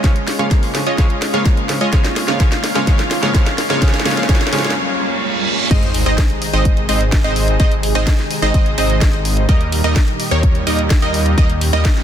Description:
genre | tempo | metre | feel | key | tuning
EDM, festival progressive house | 127 BPM | 4/4 | straight | Ab major | A4 = 439 Hz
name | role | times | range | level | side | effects
clear grand piano | accompaniment | 0.0-4.6 s | Db3 to Db4 | -24 LUFS | right 1 dB | sidechain pumping, ping-pong delay
lush unison pad | sustained chords | 0.0-12.0 s | Bb2 to C6 | -25 LUFS | equal | chorus, phaser, sidechain pumping
supersaw stab | riff | 0.0-11.9 s | G3 to F5 | -20 LUFS | right 1 dB | sidechain pumping, ping-pong delay
electronic kick drum | drums | 0.0-11.9 s | none | -14 LUFS | equal | none
house drum kit | drums | 0.0-12.0 s | crash cymbal, hi-hat, snare drum | -23 LUFS | equal | none
riser, reverse cymbal and sub drop | sound effects | 3.0-7.6 s | none | -25 LUFS | right 2 dB | none
wide unison pluck | arpeggios | 5.7-11.9 s | Db5 to Eb5 | -24 LUFS | right 1 dB | sidechain pumping, ping-pong delay
wide detuned saw bass | bass | 5.7-11.8 s | Ab1 to Eb2 | -18 LUFS | equal | chorus, sidechain pumping
room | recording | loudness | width
light reverb, digital ambience | dense, heavily limited modern master | -13 LUFS | side -9 dB against mid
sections
0.0-5.7 A section; 5.7-12.0 B section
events
build-up 0.0-5.7; drum fill 0.0-4.8; filter sweep on analog synth pad 0.0-5.7; riser 3.0-5.7; break 4.8-5.7; reverse cymbal 4.8-5.7; drop 5.7-12.0; impact 5.7-7.6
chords
0.0 Db; 1.9 Bbmadd9; 5.7 Ab; 9.5 Eb

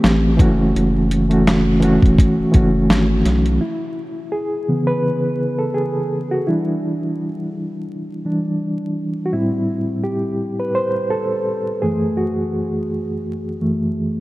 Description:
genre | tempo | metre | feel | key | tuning
lo-fi hip hop | 84 BPM | 4/4 | swing 56% on 16ths | C# minor | A4 = 440 Hz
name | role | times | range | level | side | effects
reed electric piano | accompaniment | 0.0-14.2 s | F#2 to C5 | -18 LUFS | equal | fast tremolo, cassette tape, low-pass filter
round analog bass | bass | 0.0-3.6 s | E1 to B1 | -19 LUFS | equal | none
dusty soul sampler-style drum kit | drums | 0.0-3.6 s | hi-hat, kick drum, snare drum | -16 LUFS | equal | none
room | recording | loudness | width
moderate huge ambient reverb, RT60 3.9 s | dreamy mix soaked in reverb, vinyl crackle | -16 LUFS | side -18 dB against mid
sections
0.0-3.6 A section; 3.6-14.2 B section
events
reed electric piano solo 3.6-14.2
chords
0.4 F#m7; 3.6 C#m7; 6.5 Em7; 9.3 Am7; 11.8 F#m7

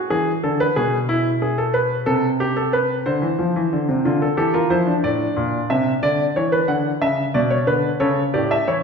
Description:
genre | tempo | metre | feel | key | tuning
classical, baroque-style 3-part fugue for grand piano | 61 BPM (dotted quarters) | 12/8 | straight | unclear | A4 = 440 Hz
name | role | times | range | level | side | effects
clear grand piano | solo | 0.0-8.8 s | A2 to F#5 | -17 LUFS | equal | none
room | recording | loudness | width
wet recital hall reverb, RT60 1.5 s | recorded in a church or concert hall | -17 LUFS | side -5 dB against mid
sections
0.0-8.8 A section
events
none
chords
0.1 E; 2.1 Am/C; 4.0 Dm; 6.0 E5/D; 8.0 A7

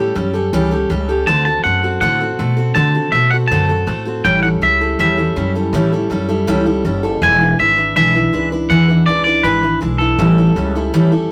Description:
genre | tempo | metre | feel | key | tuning
rockabilly | 161 BPM | 4/4 | straight | A mixolydian | A4 = 440 Hz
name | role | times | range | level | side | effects
picked steel-string acoustic guitar | accompaniment | 0.0-11.3 s | A2 to B4 | -20 LUFS | equal | none
upright bass | bass | 0.0-11.3 s | E1 to D3 | -20 LUFS | equal | none
twangy electric guitar | melody | 1.3-11.3 s | A4 to A5 | -18 LUFS | equal | none
room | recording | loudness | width
light reverb | rough rehearsal-room recording, warm saturation | -15 LUFS | mono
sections
0.0-11.3 A section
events
none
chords
0.0 A7; 1.3 D7; 4.2 A7; 7.2 E7; 10.2 A7

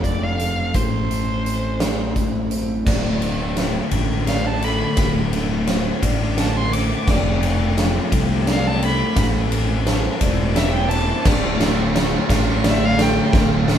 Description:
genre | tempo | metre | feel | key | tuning
post-rock | 57 BPM (dotted quarters) | 6/8 | straight | D minor | A4 = 441 Hz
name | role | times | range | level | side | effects
rich violin | melody | 0.0-13.3 s | C5 to D6 | -26 LUFS | right 2 dB | none
glassy FM pad | sustained chords | 0.0-13.8 s | D3 to C5 | -30 LUFS | left 1 dB | none
electric guitar through a small old amp | arpeggios | 0.0-13.8 s | D2 to A4 | -27 LUFS | left 1 dB | spring reverb
fuzz fingered electric bass | bass | 0.0-13.8 s | D1 to C2 | -22 LUFS | equal | overdrive
huge arena drum kit | drums | 0.0-13.8 s | crash cymbal, hi-hat, kick drum, ride cymbal, snare drum | -21 LUFS | right 1 dB | none
felt-muted upright piano | arpeggios | 0.1-13.7 s | A4 to D5 | -32 LUFS | right 2 dB | none
distorted electric guitar | riff | 2.9-13.8 s | D2 to E3 | -26 LUFS | left 4 dB | distortion
overdriven electric guitar | riff | 11.3-13.8 s | A3 to F4 | -28 LUFS | right 5 dB | none
room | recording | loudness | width
moderate stone room reverb, RT60 1.1 s | band playing live in one room | -17 LUFS | side -9 dB against mid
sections
0.0-2.9 A section; 2.9-13.8 B section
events
build-up 2.9-13.8; drum fill 2.9-13.8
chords
0.0 F6; 0.8 Am; 2.9 Dm; 7.1 F6; 9.2 Am; 11.3 Dm

